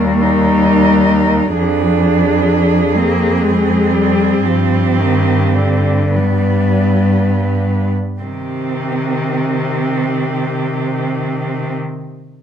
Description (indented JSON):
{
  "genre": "classical, lyrical piece for cello ensemble",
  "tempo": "27-45 BPM (dotted quarters)",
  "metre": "12/8",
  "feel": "rubato",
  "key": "C minor",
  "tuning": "A4 = 440 Hz",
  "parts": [
    { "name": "warm cello", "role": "melody", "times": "0.0-11.7 s", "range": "G4 to B4", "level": "-22 LUFS", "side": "left 5 dB", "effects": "none" },
    { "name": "warm cello", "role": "second line", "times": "0.0-11.7 s", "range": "Bb3 to Eb4", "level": "-19 LUFS", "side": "right 8 dB", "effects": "none" },
    { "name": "rich cello", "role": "accompaniment", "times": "0.0-11.7 s", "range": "D3 to Bb3", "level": "-17 LUFS", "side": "left 5 dB", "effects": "none" },
    { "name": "rich cello", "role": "bass", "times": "0.0-11.7 s", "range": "Eb2 to C3", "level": "-17 LUFS", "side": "right 2 dB", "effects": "none" }
  ],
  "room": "light reverb",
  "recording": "close, detailed microphones",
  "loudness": "-12 LUFS",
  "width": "side -8 dB against mid",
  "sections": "0.0-8.2 A section; 8.2-12.4 B section",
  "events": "slowing down 0.0-8.2",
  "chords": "0.0 Eb; 1.6 Fm; 4.4 G7; 8.2 Cm",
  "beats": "0.22 | 1.57 2.96 4.45 6.15 | 8.22 10.21"
}